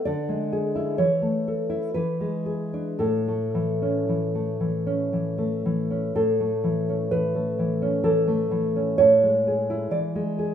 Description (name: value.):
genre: romantic piece for solo classical guitar.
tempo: 54-65 BPM.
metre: 3/4.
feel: rubato.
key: A major.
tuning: A4 = 444 Hz.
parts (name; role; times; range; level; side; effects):
nylon-string guitar; solo; 0.0-10.5 s; A2 to D5; -22 LUFS; equal; none.
room: moderate recital hall reverb, RT60 1.6 s.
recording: minimal, uncompressed stereo recording.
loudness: -22 LUFS.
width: side -9 dB against mid.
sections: 0.0-6.2 A section; 6.2-10.5 A section.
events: none.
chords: 0.1 E7/D; 1.0 A/E; 2.0 E7; 3.0 A; 9.0 E7/A.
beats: | 0.07 1.00 1.96 | 3.01 4.09 5.14 | 6.17 7.13 8.06 | 9.00 9.94.